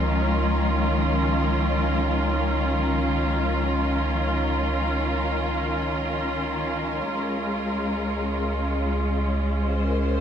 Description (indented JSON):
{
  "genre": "ambient",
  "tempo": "free time",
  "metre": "none",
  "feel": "none",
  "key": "Db major",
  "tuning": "A4 = 440 Hz",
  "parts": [
    { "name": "clear studio string section", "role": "sustained chords", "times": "0.0-10.2 s", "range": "Eb3 to C5", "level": "-24 LUFS", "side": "equal", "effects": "none" },
    { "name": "vibraphone with medium mallets", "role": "arpeggios", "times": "0.0-10.2 s", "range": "F3 to C6", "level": "-31 LUFS", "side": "left 4 dB", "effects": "tape echo" },
    { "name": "warm sub bass", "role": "bass", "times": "0.0-10.2 s", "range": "Db2", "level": "-27 LUFS", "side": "right 1 dB", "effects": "none" }
  ],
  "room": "moderate lush hall reverb, RT60 2.8 s",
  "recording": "cassette tape",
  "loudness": "-22 LUFS",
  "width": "side -8 dB against mid",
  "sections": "0.0-10.2 A section",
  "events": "none",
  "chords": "0.0 Dbmaj13; 7.1 Dbmaj7"
}